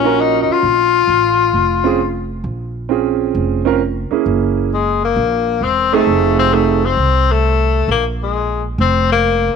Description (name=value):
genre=jazz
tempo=132 BPM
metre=4/4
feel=swing 68% on 8ths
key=Bb minor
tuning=A4 = 442 Hz
part: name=clear tenor saxophone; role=melody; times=0.0-9.5 s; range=Ab3 to F4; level=-14 LUFS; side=left 8 dB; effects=none
part: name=clear baby grand piano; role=accompaniment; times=0.0-6.8, 9.5-9.6 s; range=A3 to Bb4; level=-16 LUFS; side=right 12 dB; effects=none
part: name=upright bass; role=bass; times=0.0-9.5 s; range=Fb1 to C2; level=-19 LUFS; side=right 2 dB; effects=none
room=light reverb, small room ambience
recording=1960s-style stereo with parts hard left and right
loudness=-13 LUFS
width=side -6 dB against mid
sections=0.0-9.6 A section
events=none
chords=0.0 Ebm7; 0.6 Bbm9; 4.3 Gb7; 6.1 F7#9; 7.9 Bb5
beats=0.18 | 0.64 1.09 1.54 1.99 | 2.45 2.90 3.35 3.81 | 4.26 4.71 5.17 5.62 | 6.07 6.53 6.98 7.43 | 7.89 8.34 8.79 9.25